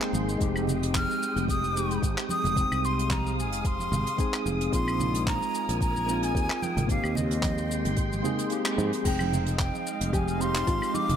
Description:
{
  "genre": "sunset chillout",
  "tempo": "111 BPM",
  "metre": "4/4",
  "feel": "swing 55% on 16ths",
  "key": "F minor",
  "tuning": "A4 = 438 Hz",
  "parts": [
    { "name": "soft electric-piano-like synth keys", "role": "accompaniment", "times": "0.0-11.2 s", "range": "Ab3 to G5", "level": "-31 LUFS", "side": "equal", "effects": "chorus, auto-pan, digital delay" },
    { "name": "soft string machine", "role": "sustained chords", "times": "0.0-11.2 s", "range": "Ab3 to Eb6", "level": "-34 LUFS", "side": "equal", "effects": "ensemble chorus" },
    { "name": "jazz brush drum kit", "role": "drums", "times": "0.0-11.2 s", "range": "claves, crash cymbal, handclaps, hi-hat, shaker", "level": "-34 LUFS", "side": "equal", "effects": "none" },
    { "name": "sustaining fretless electric bass", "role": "bass", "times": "0.1-11.2 s", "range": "F1 to Ab2", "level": "-30 LUFS", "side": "equal", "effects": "none" },
    { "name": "congas", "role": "percussion", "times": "0.1-11.2 s", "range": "none", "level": "-35 LUFS", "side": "right 3 dB", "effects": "none" },
    { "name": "electronic kick drum", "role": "drums", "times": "0.4-10.8 s", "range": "none", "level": "-30 LUFS", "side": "equal", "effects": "none" },
    { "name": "breathy jazz flute", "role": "melody", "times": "1.0-11.2 s", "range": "Eb5 to F6", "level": "-31 LUFS", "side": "equal", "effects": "digital delay" },
    { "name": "steel pan", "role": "arpeggios", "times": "9.1-11.2 s", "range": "Eb4 to Ab4", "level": "-35 LUFS", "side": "left 3 dB", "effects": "digital delay" }
  ],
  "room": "light reverb, small room ambience",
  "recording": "none",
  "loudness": "-24 LUFS",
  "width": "side -9 dB against mid",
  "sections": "0.0-9.1 A section; 9.1-11.2 B section",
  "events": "kick drops out 8.5-9.1; band accent 8.6",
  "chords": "0.4 Fm9; 4.7 Bb7sus4; 6.9 Abmaj7; 9.1 Fm9",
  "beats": "| 0.40 0.94 1.49 2.02 | 2.57 3.11 3.65 4.19 | 4.73 5.27 5.81 6.35 | 6.89 7.43 7.97 8.51 | 9.05 9.59 10.13 10.67"
}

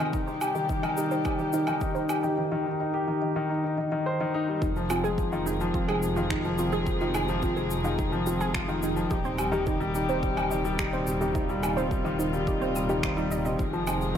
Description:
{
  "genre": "piano and strings electronica",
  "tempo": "107 BPM",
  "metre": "4/4",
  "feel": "straight",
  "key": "F minor",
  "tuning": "A4 = 439 Hz",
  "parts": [
    { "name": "dark string quartet", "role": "sustained chords", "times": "0.0-14.2 s", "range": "C3 to Ab4", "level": "-33 LUFS", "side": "left 2 dB", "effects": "none" },
    { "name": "dark concert grand piano", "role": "riff", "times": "0.0-14.2 s", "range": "Eb3 to C5", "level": "-28 LUFS", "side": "left 2 dB", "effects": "digital delay" },
    { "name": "dark detuned saw bass", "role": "bass", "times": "0.0-14.2 s", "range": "Eb1 to F1", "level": "-34 LUFS", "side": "right 1 dB", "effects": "sidechain pumping, high-pass filter" },
    { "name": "warbly dusty pluck", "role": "arpeggios", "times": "0.1-14.2 s", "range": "Eb4 to Eb6", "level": "-33 LUFS", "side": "right 4 dB", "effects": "chorus, sidechain pumping, digital delay" },
    { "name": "electronic kick drum", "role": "drums", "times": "0.1-14.2 s", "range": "none", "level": "-32 LUFS", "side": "right 1 dB", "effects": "overdrive" },
    { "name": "electronic shaker, woodblock and finger snaps", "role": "drums", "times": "0.1-14.2 s", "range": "none", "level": "-34 LUFS", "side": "right 1 dB", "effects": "overdrive" }
  ],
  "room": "moderate lush hall reverb, RT60 2.5 s",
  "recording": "none",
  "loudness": "-25 LUFS",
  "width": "side -9 dB against mid",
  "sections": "0.0-4.6 A section; 4.6-14.2 B section",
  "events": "build-up 0.0-4.6; drop 4.6-14.2",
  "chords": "0.1 Cm/Eb; 4.6 Fm7; 9.1 Cm/Eb; 13.6 Fm7",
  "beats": "| 0.13 0.69 1.26 1.82 | 2.38 2.94 3.50 4.06 | 4.62 5.18 5.74 6.30 | 6.86 7.42 7.99 8.55 | 9.11 9.67 10.23 10.79 | 11.35 11.91 12.47 13.03 | 13.59 14.15"
}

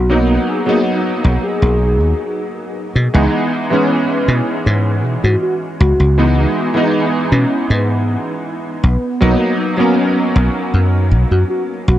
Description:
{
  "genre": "vaporwave",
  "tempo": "79 BPM",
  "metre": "4/4",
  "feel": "straight",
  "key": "unclear",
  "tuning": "A4 = 440 Hz",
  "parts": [
    { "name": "warm velvety synth lead", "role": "melody", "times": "0.0-12.0 s", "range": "B3 to G#4", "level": "-21 LUFS", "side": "equal", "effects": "chorus, tape echo" },
    { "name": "warm electric grand piano", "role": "accompaniment", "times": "0.0-12.0 s", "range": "E3 to D#4", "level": "-16 LUFS", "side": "equal", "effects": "ensemble chorus, tape echo" },
    { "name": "dry thumbed slap bass", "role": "bass", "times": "0.0-12.0 s", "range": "B1 to B2", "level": "-13 LUFS", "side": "equal", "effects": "none" }
  ],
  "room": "moderate huge ambient reverb, RT60 6.6 s",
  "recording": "dark, warm production",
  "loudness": "-13 LUFS",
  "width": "side -13 dB against mid",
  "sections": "0.0-3.1 A section; 3.1-12.0 B section",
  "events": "none",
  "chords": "0.0 G#m7/B; 3.1 C#m9; 8.8 G#m7/B (rootless)",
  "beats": "| 0.10 0.86 1.62 2.38 | 3.14 3.90 4.66 5.42 | 6.18 6.94 7.70 8.46 | 9.22 9.98 10.74 11.50"
}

